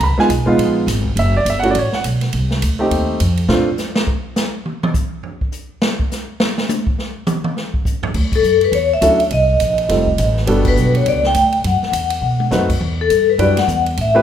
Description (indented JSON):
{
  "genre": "jazz, small-group swing and bop",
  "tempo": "206 BPM",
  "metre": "4/4",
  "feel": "swing 61% on 8ths",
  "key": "unclear",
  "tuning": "A4 = 440 Hz",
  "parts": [
    { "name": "warm grand piano", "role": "accompaniment", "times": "0.0-3.7, 9.0-14.2 s", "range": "F#3 to B5", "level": "-17 LUFS", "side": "right 1 dB", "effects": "none" },
    { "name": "upright bass", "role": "bass", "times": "0.0-3.7, 8.0-14.2 s", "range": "F1 to B2", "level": "-18 LUFS", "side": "equal", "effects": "none" },
    { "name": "swinging big-band drum kit", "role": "drums", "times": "0.0-14.1 s", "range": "crash cymbal, hi-hat, kick drum, ride cymbal, snare drum, toms", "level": "-21 LUFS", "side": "equal", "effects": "none" },
    { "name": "vibraphone with medium mallets", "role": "melody", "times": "8.4-14.2 s", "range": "A4 to G5", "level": "-15 LUFS", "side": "left 2 dB", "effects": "none" }
  ],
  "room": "light reverb",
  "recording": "none",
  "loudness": "-14 LUFS",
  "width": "side -9 dB against mid",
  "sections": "0.0-8.1 A section; 8.1-14.2 B section",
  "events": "drum solo 3.5-8.1; band accent 8.3, 10.6, 13.5; drum fill 12.2",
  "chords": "0.0 C#7; 1.2 F#m7; 2.3 F7; 3.5 Bbmaj7; 4.7 N.C.; 8.1 Dmaj9; 9.3 Cm7; 9.9 F9; 10.5 Gmaj7; 11.6 Esus2; 12.2 B7b9; 12.8 Em7"
}